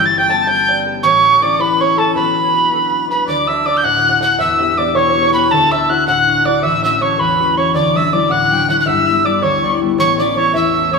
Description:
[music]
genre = celtic folk, Celtic jig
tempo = 107 BPM (dotted quarters)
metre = 6/8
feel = straight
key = B minor, D major from 3.3 s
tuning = A4 = 440 Hz
[part]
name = mellow tin whistle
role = melody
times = 0.0-11.0 s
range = A5 to A6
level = -14 LUFS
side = right 1 dB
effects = none
[part]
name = accordion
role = second line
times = 0.0-11.0 s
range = A4 to A5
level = -22 LUFS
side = left 1 dB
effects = none
[part]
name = open-back banjo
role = second line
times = 0.0-11.0 s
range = A4 to A5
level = -22 LUFS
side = right 6 dB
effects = none
[part]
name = concert harp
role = accompaniment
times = 0.0-11.0 s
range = D1 to B4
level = -19 LUFS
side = left 6 dB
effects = none
[sound]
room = wet stone room reverb, RT60 1.5 s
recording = band playing live in one room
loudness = -12 LUFS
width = side -4 dB against mid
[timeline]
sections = 0.0-3.3 A section; 3.3-11.0 B section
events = none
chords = 0.0 Gadd9; 1.0 A; 2.2 Bm; 3.3 D; 4.4 Em; 5.5 Dadd9; 6.6 A6; 7.7 Dadd9; 8.9 G6; 10.0 A

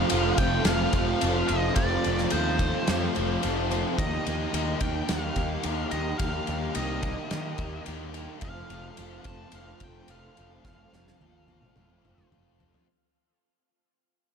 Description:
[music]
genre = rock, shoegaze and dream pop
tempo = 108 BPM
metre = 4/4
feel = straight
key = F mixolydian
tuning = A4 = 440 Hz
[part]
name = nasal lead guitar with a parked wah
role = melody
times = 0.0-12.3 s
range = C5 to A5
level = -35 LUFS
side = equal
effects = overdrive, tape echo
[part]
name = soft string machine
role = sustained chords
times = 0.0-12.8 s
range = G4 to C6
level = -40 LUFS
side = equal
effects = none
[part]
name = picked twelve-string acoustic guitar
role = arpeggios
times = 0.0-12.9 s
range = F3 to G4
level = -40 LUFS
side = left 12 dB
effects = none
[part]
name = biting overdriven guitar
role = riff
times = 0.0-12.9 s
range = Eb3 to Bb4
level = -34 LUFS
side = left 12 dB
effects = lush chorus
[part]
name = biting overdriven guitar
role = riff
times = 0.0-4.0 s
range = F2 to F3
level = -32 LUFS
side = left 1 dB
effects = none
[part]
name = overdriven semi-hollow guitar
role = riff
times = 0.0-12.9 s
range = Eb3 to G4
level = -32 LUFS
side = right 11 dB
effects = reverse reverb
[part]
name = fuzz picked electric bass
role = bass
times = 0.0-12.7 s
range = F1 to Eb3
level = -32 LUFS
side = equal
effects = overdrive
[part]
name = loose indie drum kit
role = drums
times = 0.1-12.9 s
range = kick drum, ride cymbal, snare drum, toms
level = -31 LUFS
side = left 1 dB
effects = none
[sound]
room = light reverb, small room ambience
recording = none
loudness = -24 LUFS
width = side -6 dB against mid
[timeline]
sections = 0.0-12.9 A section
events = fade-out 0.0-12.9; drum fill 10.6-12.9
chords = 0.0 F; 4.0 Ebadd9; 8.4 F

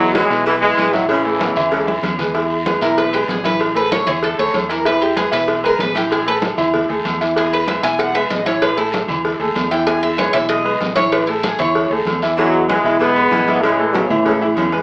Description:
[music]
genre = latin, salsa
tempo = 191 BPM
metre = 4/4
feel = straight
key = E major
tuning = A4 = 440 Hz
[part]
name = bright trombone section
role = melody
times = 0.0-2.0, 12.4-14.4 s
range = B2 to B3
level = -16 LUFS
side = equal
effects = none
[part]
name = bright concert grand piano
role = accompaniment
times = 0.0-14.8 s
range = E3 to E5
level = -19 LUFS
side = equal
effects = none
[part]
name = deep dub fingered electric bass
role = bass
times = 0.0-14.8 s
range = A1 to A2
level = -29 LUFS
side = equal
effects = none
[part]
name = congas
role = percussion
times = 0.0-14.8 s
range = none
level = -26 LUFS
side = equal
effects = none
[part]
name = agogo bells and timbales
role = percussion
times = 0.1-14.7 s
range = none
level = -24 LUFS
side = right 1 dB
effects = none
[part]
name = cowbell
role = percussion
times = 0.1-14.8 s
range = none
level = -23 LUFS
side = left 1 dB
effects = none
[part]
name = clear saxophone section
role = second line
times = 0.2-2.2, 12.4-14.7 s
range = B2 to F#3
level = -23 LUFS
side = equal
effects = none
[part]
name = guiro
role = percussion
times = 0.2-12.4 s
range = none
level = -32 LUFS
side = left 1 dB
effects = none
[part]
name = Cuban tres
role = melody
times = 2.8-11.9 s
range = E4 to G#5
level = -19 LUFS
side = equal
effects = none
[sound]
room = wet studio reverb, RT60 0.7 s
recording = AM radio sound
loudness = -14 LUFS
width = side -23 dB against mid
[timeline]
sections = 0.0-2.3 A section; 2.3-12.4 B section; 12.4-14.8 A section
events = drum fill 1.9-2.3; Cuban tres solo 2.3-12.4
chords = 0.0 E; 3.6 A5; 4.9 E; 6.1 A5; 7.4 E; 8.6 A5; 9.9 E; 11.1 Amaj7; 12.4 E

